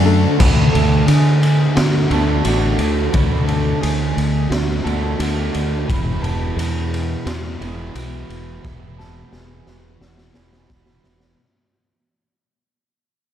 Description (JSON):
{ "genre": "rock, shoegaze and dream pop", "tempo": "87 BPM", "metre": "4/4", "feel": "straight", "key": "E mixolydian", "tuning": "A4 = 441 Hz", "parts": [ { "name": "electric guitar through a small old amp", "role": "arpeggios", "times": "0.0-11.4 s", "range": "F#4 to A5", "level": "-27 LUFS", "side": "right 2 dB", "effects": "analog chorus, slapback echo" }, { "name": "overdriven semi-hollow guitar", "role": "riff", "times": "0.0-11.4 s", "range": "E2 to F#4", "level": "-23 LUFS", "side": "right 9 dB", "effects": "reverse reverb" }, { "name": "thick fuzz guitar", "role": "riff", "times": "0.0-11.4 s", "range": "E2 to D4", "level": "-24 LUFS", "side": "left 10 dB", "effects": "distortion, wide subtle chorus" }, { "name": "fingered electric bass", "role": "bass", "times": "0.0-11.3 s", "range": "E1 to D3", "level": "-19 LUFS", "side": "equal", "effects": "none" }, { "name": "raw garage drum kit", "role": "drums", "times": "0.4-11.4 s", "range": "crash cymbal, kick drum, ride cymbal, snare drum", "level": "-21 LUFS", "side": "equal", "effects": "none" } ], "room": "light reverb, small room ambience", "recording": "none", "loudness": "-15 LUFS", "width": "side -10 dB against mid", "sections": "0.4-11.4 A section", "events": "fade-out 0.4-11.4; drum fill 8.6-11.4", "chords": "0.4 D; 5.9 Eadd9" }